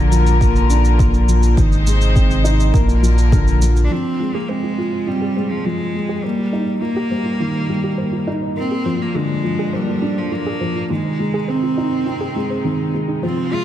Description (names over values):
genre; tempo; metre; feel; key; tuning
piano and strings electronica; 103 BPM; 4/4; straight; unclear; A4 = 440 Hz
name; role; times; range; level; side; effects
rich chamber string section; sustained chords; 0.0-13.6 s; Bb2 to C5; -27 LUFS; left 2 dB; none
felt-muted upright piano; riff; 0.0-13.6 s; D3 to F4; -20 LUFS; left 1 dB; tape echo
warm sub bass; bass; 0.0-3.9 s; Ab1 to Bb1; -14 LUFS; equal; sidechain pumping
shaker; drums; 0.1-3.9 s; none; -32 LUFS; right 2 dB; low-pass filter on perc, studio reverb
electronic kick drum; drums; 0.4-3.4 s; none; -16 LUFS; equal; studio reverb
rich cello; melody; 3.8-13.6 s; F3 to F4; -23 LUFS; right 2 dB; tape echo
warbly dusty pluck; arpeggios; 3.9-13.6 s; C4 to C5; -29 LUFS; right 3 dB; chorus, sidechain pumping, tape echo
room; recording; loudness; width
light reverb, small room ambience; none; -15 LUFS; side -12 dB against mid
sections
0.0-3.9 A section; 3.9-13.6 B section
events
fade-in on string section 3.9-13.6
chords
0.0 Bb; 1.6 Ab; 2.7 Bb; 3.9 Fm; 6.2 Eb; 8.6 Bb; 10.9 Ab